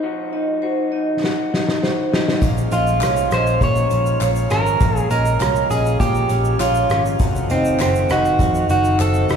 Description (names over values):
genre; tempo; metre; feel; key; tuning
indie pop, bedroom pop; 100 BPM; 4/4; straight; unclear; A4 = 440 Hz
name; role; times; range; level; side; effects
electric guitar through a small old amp; accompaniment; 0.0-9.4 s; Bb2 to Gb4; -24 LUFS; left 3 dB; warbly pitch drift
vibraphone with medium mallets; second line; 0.3-9.4 s; C5 to Eb5; -26 LUFS; right 4 dB; none
unplugged drum kit; drums; 1.2-9.4 s; hi-hat, kick drum, rim click, shaker, snare drum; -23 LUFS; equal; none
pipe organ, principal chorus; sustained chords; 2.4-9.4 s; Eb3 to F5; -29 LUFS; equal; none
vintage muted picked electric bass; bass; 2.4-9.4 s; F1 to Bb2; -20 LUFS; equal; none
electric guitar through a small old amp; melody; 2.7-9.4 s; C4 to Db5; -19 LUFS; right 2 dB; none
group handclap; percussion; 3.0-9.1 s; none; -37 LUFS; left 5 dB; none
room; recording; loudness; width
wet cathedral reverb, RT60 4.7 s; band playing live in one room; -16 LUFS; side -7 dB against mid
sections
0.0-9.4 A section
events
drum fill 1.2-2.4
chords
0.0 Ebm69/F; 2.4 Bbm7; 7.2 F7b9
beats
| 0.03 0.63 1.22 1.82 | 2.42 3.02 3.61 4.21 | 4.81 5.41 6.00 6.60 | 7.20 7.80 8.39 8.99